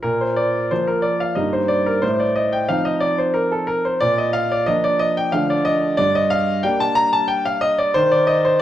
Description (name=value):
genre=classical-period piano sonatina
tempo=91 BPM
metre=3/4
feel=straight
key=Bb major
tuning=A4 = 438 Hz
part: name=clear concert grand piano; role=solo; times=0.0-8.6 s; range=G2 to Bb5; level=-16 LUFS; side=equal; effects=none
room=wet recital hall reverb, RT60 1.6 s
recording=none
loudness=-16 LUFS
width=side -12 dB against mid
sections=0.0-8.6 A section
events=none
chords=0.0 Bb5; 1.4 Eb/G; 2.0 F7/A; 4.0 Bb; 5.3 Dm; 6.0 Gm; 8.0 Cm/Eb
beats=| 0.04 0.71 1.37 | 2.03 2.69 3.35 | 4.01 4.67 5.33 | 5.99 6.64 7.29 | 7.95 8.61